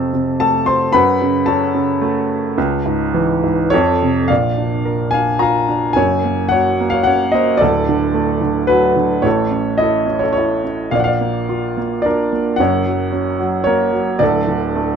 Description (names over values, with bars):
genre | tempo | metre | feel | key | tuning
classical, lyrical solo piano | 109 BPM | 3/4 | rubato | unclear | A4 = 443 Hz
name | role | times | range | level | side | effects
clear upright piano | solo | 0.0-15.0 s | D1 to C6 | -14 LUFS | equal | none
room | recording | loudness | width
light reverb | dark, warm production | -14 LUFS | side -7 dB against mid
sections
0.0-4.3 A section; 4.3-15.0 B section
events
none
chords
0.0 F; 0.9 F#m; 2.6 C#m; 3.7 F; 4.3 Bb; 6.0 Gb; 7.6 D; 9.3 A; 10.9 Bb; 12.6 Gb; 14.2 D5